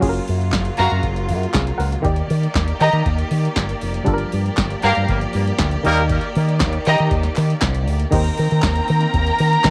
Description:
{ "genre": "disco", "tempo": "118 BPM", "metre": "4/4", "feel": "straight", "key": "unclear", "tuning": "A4 = 440 Hz", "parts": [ { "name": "muted clav", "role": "accompaniment", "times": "0.0-9.7 s", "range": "Eb3 to Gb5", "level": "-26 LUFS", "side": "equal", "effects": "cassette tape" }, { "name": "bright studio string section", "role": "sustained chords", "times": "0.0-9.7 s", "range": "Db3 to G5", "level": "-30 LUFS", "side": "equal", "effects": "cassette tape" }, { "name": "fingered electric bass with an envelope filter", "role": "bass", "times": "0.0-9.7 s", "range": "F1 to Eb3", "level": "-22 LUFS", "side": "equal", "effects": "none" }, { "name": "electro analog drum machine", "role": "drums", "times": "0.0-9.7 s", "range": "crash cymbal, hi-hat, kick drum, snare drum", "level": "-26 LUFS", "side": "equal", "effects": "none" }, { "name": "group handclap", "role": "percussion", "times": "0.5-9.7 s", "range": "none", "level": "-31 LUFS", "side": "equal", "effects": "none" }, { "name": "warm studio violin section", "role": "second line", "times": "0.8-9.7 s", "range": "Gb4 to Bb5", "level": "-21 LUFS", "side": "equal", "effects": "cassette tape" }, { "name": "warm horn section", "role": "stabs", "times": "4.8-6.0 s", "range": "G3 to Bb4", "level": "-26 LUFS", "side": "equal", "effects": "cassette tape, tape echo" } ], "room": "light reverb, small room ambience", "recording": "home recording on cassette", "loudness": "-19 LUFS", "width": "mono", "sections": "0.0-8.1 A section; 8.1-9.7 B section", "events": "none", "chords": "0.0 Gbmaj7; 2.0 Ebmaj7; 4.1 Gm7; 5.8 Ebmaj7; 8.1 Eb6", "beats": "| 0.02 0.53 1.03 1.54 | 2.05 2.55 3.06 3.57 | 4.08 4.58 5.09 5.59 | 6.10 6.61 7.11 7.62 | 8.13 8.63 9.14 9.64" }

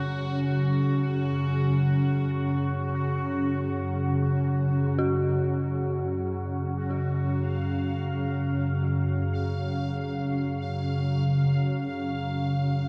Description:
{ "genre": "dark ambient drone", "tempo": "free time", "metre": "none", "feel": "none", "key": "unclear", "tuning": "A4 = 442 Hz", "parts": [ { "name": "dark detuned synth bell", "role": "arpeggios", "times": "0.0-12.9 s", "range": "E#4 to F#4", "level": "-37 LUFS", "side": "equal", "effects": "chorus, tremolo, delay" }, { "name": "organ-like drone", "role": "drone", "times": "0.0-12.9 s", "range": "F#2 to C#3", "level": "-27 LUFS", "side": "equal", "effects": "ensemble chorus, built-in reverb" }, { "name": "bubbling stepped-filter texture", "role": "texture", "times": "0.0-12.9 s", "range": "F#4 to E#5", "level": "-39 LUFS", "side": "equal", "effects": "chorus, built-in reverb" } ], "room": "wet huge ambient reverb, RT60 7.9 s", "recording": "dark, warm production", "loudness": "-27 LUFS", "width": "mono", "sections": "0.0-12.9 A section", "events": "filter sweep on synth drone 0.0-12.9", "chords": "0.0 F#5", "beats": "free time" }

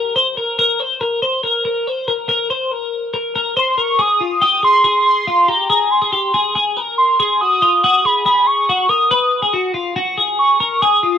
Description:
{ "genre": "indie pop", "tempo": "141 BPM", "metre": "4/4", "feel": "straight", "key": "Ab major", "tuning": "A4 = 440 Hz", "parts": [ { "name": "warm velvety synth lead", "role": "melody", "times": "0.0-0.2, 3.6-11.2 s", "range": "Bb4 to Eb6", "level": "-14 LUFS", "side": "right 1 dB", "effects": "chorus, slapback echo" }, { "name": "twelve-string electric guitar", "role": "arpeggios", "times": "0.0-11.2 s", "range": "F4 to C5", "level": "-16 LUFS", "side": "left 3 dB", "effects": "lush chorus" } ], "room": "light reverb", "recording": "none", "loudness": "-13 LUFS", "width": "side -9 dB against mid", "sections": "0.6-4.0 A section; 4.0-11.2 B section", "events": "none", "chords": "0.0 Gmadd11 (rootless); 4.0 Ab; 7.4 Badd9 (rootless)", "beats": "0.15 | 0.58 1.01 1.44 1.86 | 2.29 2.72 3.14 3.57 | 4.00 4.42 4.85 5.28 | 5.70 6.13 6.56 6.98 | 7.41 7.83 8.26 8.69 | 9.11 9.54 9.96 10.39 | 10.82" }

